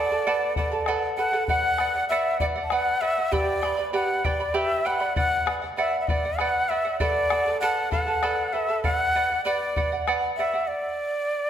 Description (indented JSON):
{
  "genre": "andean folk, Andean ensemble",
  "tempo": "65 BPM (dotted quarters)",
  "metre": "6/8",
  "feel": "straight",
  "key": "B minor",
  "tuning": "A4 = 439 Hz",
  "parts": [
    { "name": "breathy quena", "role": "melody", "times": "0.0-11.5 s", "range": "D5 to A5", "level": "-24 LUFS", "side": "left 1 dB", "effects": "none" },
    { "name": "charango", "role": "accompaniment", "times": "0.0-10.7 s", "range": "G4 to B5", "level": "-27 LUFS", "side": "right 3 dB", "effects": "none" },
    { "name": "bombo", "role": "percussion", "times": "0.6-10.2 s", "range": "none", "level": "-31 LUFS", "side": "left 2 dB", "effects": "none" }
  ],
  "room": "wet recital hall reverb, RT60 1.8 s",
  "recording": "none",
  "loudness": "-22 LUFS",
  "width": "side -10 dB against mid",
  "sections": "0.0-11.5 A section",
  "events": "stop 10.7-11.5",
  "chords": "0.0 D; 1.5 Bm; 3.3 G; 5.2 Bm; 7.0 D; 8.8 Bm; 10.7 N.C."
}